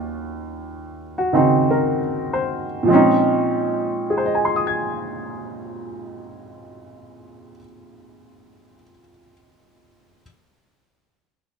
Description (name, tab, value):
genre	jazz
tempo	49-58 BPM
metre	4/4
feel	swing 68% on 8ths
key	Bb minor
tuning	A4 = 440 Hz
part	clear baby grand piano	accompaniment	0.0-10.2 s	Eb2 to Ab6	-19 LUFS	right 1 dB	none
room	moderate club reverb, RT60 0.6 s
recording	minimal, uncompressed stereo recording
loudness	-17 LUFS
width	side -5 dB against mid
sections	0.0-2.9 A section; 2.9-7.7 B section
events	slowing down 0.0-2.9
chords	0.0 Ebm9; 2.9 Bbm11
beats	0.60 1.71 | 2.89 4.11 5.30 6.50